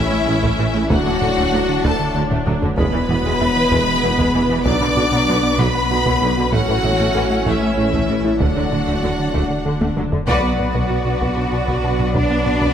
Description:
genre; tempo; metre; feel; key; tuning
cinematic, hybrid orchestral and electronic film score; 64 BPM (dotted quarters); 6/8; straight; B dorian; A4 = 440 Hz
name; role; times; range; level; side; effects
rich symphonic violin section; melody; 0.0-12.7 s; E5 to D6; -24 LUFS; left 2 dB; none
clear studio violin section; second line; 0.0-12.7 s; E4 to F#5; -26 LUFS; left 2 dB; none
clear symphonic viola section; accompaniment; 0.0-12.7 s; C#3 to D5; -26 LUFS; equal; none
hollow soft pad; sustained chords; 0.0-12.7 s; D3 to D5; -27 LUFS; left 1 dB; ensemble chorus
mellow French horn section; sustained chords; 0.0-12.7 s; E3 to D5; -25 LUFS; left 2 dB; none
mellow trombone section; sustained chords; 0.0-12.7 s; A2 to D4; -28 LUFS; right 4 dB; none
resonant blip pluck; arpeggios; 0.0-12.7 s; D3 to B4; -28 LUFS; left 1 dB; phaser, digital delay
rubbery square bass; riff; 0.0-12.7 s; D2 to B3; -24 LUFS; right 1 dB; none
mellow tuba; bass; 0.0-10.0 s; E1 to D2; -28 LUFS; right 2 dB; none
rich symphonic cello section; bass; 0.0-12.7 s; D2 to F#4; -26 LUFS; right 2 dB; none
rich symphonic double bass section; bass; 0.0-12.7 s; E1 to D2; -29 LUFS; right 2 dB; none
warm sub bass; bass; 0.0-12.7 s; D1 to B1; -28 LUFS; equal; none
solo taiko drums; drums; 0.4-12.7 s; none; -25 LUFS; equal; none
room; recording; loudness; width
moderate concert hall reverb, RT60 1.8 s; none; -15 LUFS; side -9 dB against mid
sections
0.0-10.3 A section; 10.3-12.7 B section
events
drum fill 2.3-2.8, 9.8-10.3; band accent 10.3-10.9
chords
0.0 A; 0.9 D; 2.8 E; 4.7 Bm; 6.5 A; 8.4 D; 10.3 Bm

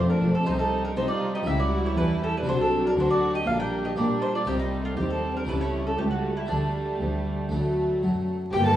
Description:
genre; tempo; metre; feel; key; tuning
classical, baroque-style concerto movement with solo episodes; 120 BPM; 4/4; straight; unclear; A4 = 440 Hz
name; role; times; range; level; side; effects
mandolin; melody; 0.0-8.8 s; D4 to G5; -29 LUFS; right 1 dB; none
warm symphonic violin section; melody; 0.0-8.8 s; G3 to A5; -34 LUFS; left 3 dB; none
rich chamber violin section; second line; 0.0-8.8 s; A3 to A4; -33 LUFS; equal; none
harpsichord; accompaniment; 0.0-8.8 s; C#2 to F4; -34 LUFS; equal; none
rich chamber viola section; accompaniment; 0.0-8.8 s; F#3 to Bb3; -30 LUFS; right 1 dB; none
clear chamber double bass section; bass; 0.0-8.8 s; F1 to C3; -31 LUFS; equal; none
rich chamber cello section; bass; 0.0-8.8 s; C#2 to C4; -30 LUFS; equal; none
room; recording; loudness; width
wet recital hall reverb, RT60 1.8 s; vinyl crackle, small room ambience; -23 LUFS; side -12 dB against mid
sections
0.0-8.5 A section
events
none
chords
0.5 Am7b5/C; 1.5 A7/C#; 2.5 D7/C; 3.5 Gm/Bb; 4.5 Cm; 5.5 A7/C#; 6.5 Dsus4; 7.5 D

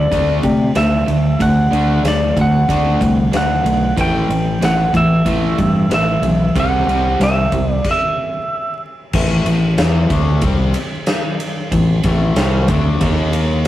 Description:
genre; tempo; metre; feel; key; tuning
hard rock; 93 BPM; 4/4; straight; A dorian; A4 = 441 Hz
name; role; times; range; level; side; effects
lightly driven lead guitar; melody; 0.0-8.8 s; D5 to G5; -19 LUFS; right 1 dB; none
crunchy overdriven guitar; riff; 0.0-13.7 s; A2 to E4; -21 LUFS; left 3 dB; none
overdriven semi-hollow guitar; riff; 0.0-7.8 s; A2 to D4; -20 LUFS; right 3 dB; none
growling fingered electric bass; bass; 0.0-13.7 s; A1 to C3; -17 LUFS; equal; overdrive
big rock drum kit; drums; 0.1-13.7 s; crash cymbal, kick drum, ride cymbal, snare drum; -21 LUFS; equal; none
room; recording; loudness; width
moderate stone room reverb, RT60 1.4 s; rough rehearsal-room recording, warm saturation, vinyl crackle; -13 LUFS; side -13 dB against mid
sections
0.0-9.1 A section; 9.1-13.7 B section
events
stop 7.9-9.1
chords
0.0 D; 4.0 A5; 6.6 C; 9.1 Am; 13.0 D#5

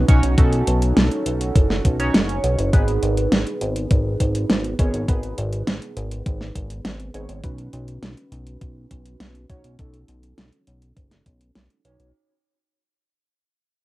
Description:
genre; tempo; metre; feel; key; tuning
synthwave; 102 BPM; 4/4; straight; unclear; A4 = 441 Hz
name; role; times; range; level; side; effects
chorused polysynth; stabs; 0.0-12.1 s; B3 to C#5; -26 LUFS; right 2 dB; phaser, cassette tape, analog delay, plate reverb
chorused synth bass; bass; 0.0-12.1 s; F#1 to B1; -23 LUFS; equal; none
electronic kick drum; drums; 0.1-11.4 s; none; -17 LUFS; equal; cassette tape
pop drum kit; drums; 0.1-12.1 s; hi-hat, snare drum; -22 LUFS; equal; overdrive, cassette tape
room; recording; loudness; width
light reverb; home recording on cassette; -18 LUFS; side -18 dB against mid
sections
0.0-12.1 A section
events
fade-out 0.0-12.1; filter sweep on analog polysynth 0.0-12.1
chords
0.0 Badd9; 2.7 G#m; 7.4 Badd9

